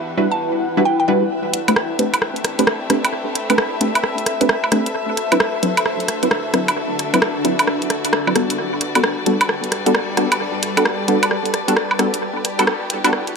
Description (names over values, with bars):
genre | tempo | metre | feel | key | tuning
UK garage, two-step garage | 132 BPM | 4/4 | swing 64% on 16ths | A dorian | A4 = 441 Hz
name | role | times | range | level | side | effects
rich studio violin section | sustained chords | 0.0-13.4 s | G3 to E5 | -27 LUFS | left 2 dB | none
granular cloud pad | texture | 0.0-13.4 s | G3 to B5 | -25 LUFS | left 1 dB | built-in reverb
punchy chord stab | stabs | 0.2-13.1 s | F#3 to B4 | -20 LUFS | equal | chorus, tape echo
mallet-like synth pluck | melody | 0.3-1.3 s | D5 to A5 | -24 LUFS | right 2 dB | chorus, phaser, vintage 12-bit sampler grit, analog delay
garage drum kit | drums | 1.5-13.3 s | hi-hat, rim click, woodblock | -19 LUFS | right 1 dB | analog delay
room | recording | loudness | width
wet spring reverb, RT60 1.8 s | echo-heavy mix, high-pass filter | -16 LUFS | side -5 dB against mid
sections
0.0-1.3 A section; 1.3-13.4 B section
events
build-up 1.3-13.4; filter sweep on synth stab 1.3-13.4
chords
0.0 Gmaj7; 1.3 Am11; 4.9 D13; 8.6 Gmaj9